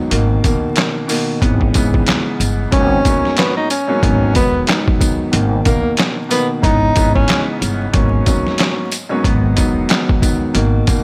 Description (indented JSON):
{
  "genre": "hip hop, boom-bap hip-hop",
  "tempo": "92 BPM",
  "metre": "4/4",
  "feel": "swing 58% on 16ths",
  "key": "unclear",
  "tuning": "A4 = 440 Hz",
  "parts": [
    { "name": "dark baby grand piano", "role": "accompaniment", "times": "0.0-11.0 s", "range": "G#2 to C#4", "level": "-21 LUFS", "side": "equal", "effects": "cassette tape, high-pass filter, low-pass filter" },
    { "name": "upright bass", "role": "bass", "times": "0.1-11.0 s", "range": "E1 to A#1", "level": "-20 LUFS", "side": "equal", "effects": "none" },
    { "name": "trip hop sampler-style drum kit", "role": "drums", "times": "0.1-11.0 s", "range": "handclaps, hi-hat, kick drum, snare drum", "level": "-19 LUFS", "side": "equal", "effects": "none" },
    { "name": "tambourine", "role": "percussion", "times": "0.5-11.0 s", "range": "none", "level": "-31 LUFS", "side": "equal", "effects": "none" },
    { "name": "breathy tenor saxophone", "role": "melody", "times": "2.7-7.4 s", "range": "A#3 to D#4", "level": "-21 LUFS", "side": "equal", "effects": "high-pass filter, low-pass filter, digital delay" }
  ],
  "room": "light reverb",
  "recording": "vinyl crackle",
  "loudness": "-15 LUFS",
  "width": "mono",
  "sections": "0.0-11.0 A section",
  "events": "none",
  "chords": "0.1 Bmaj7/G#; 1.4 C#m7/G#; 2.7 G#m11; 4.0 Emaj9; 5.3 Bmaj7/G#; 6.6 C#m7/G#; 7.9 G#m11; 9.2 Emaj9",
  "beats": "| 0.12 0.77 1.42 2.07 | 2.73 3.38 4.03 4.68 | 5.33 5.99 6.64 7.29 | 7.94 8.60 9.25 9.90 | 10.55"
}